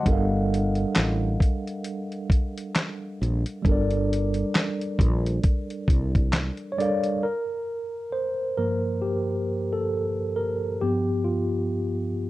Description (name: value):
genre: lo-fi hip hop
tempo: 67 BPM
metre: 4/4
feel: swing 58% on 16ths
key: G minor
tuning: A4 = 440 Hz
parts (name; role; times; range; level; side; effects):
- tine electric piano; accompaniment; 0.0-12.3 s; G2 to F#5; -26 LUFS; equal; medium stereo tremolo, cassette tape
- woody fretless electric bass; bass; 0.1-6.5 s; G1 to C2; -25 LUFS; equal; none
- dusty soul sampler-style drum kit; drums; 0.1-7.2 s; handclaps, hi-hat, kick drum, snare drum; -22 LUFS; equal; none
room: moderate studio reverb, RT60 0.6 s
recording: cassette tape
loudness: -23 LUFS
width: side -17 dB against mid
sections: 0.0-7.2 A section; 7.2-12.3 B section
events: tine electric piano solo 7.2-12.3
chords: 0.1 Gm9; 7.2 Gm7; 10.8 G7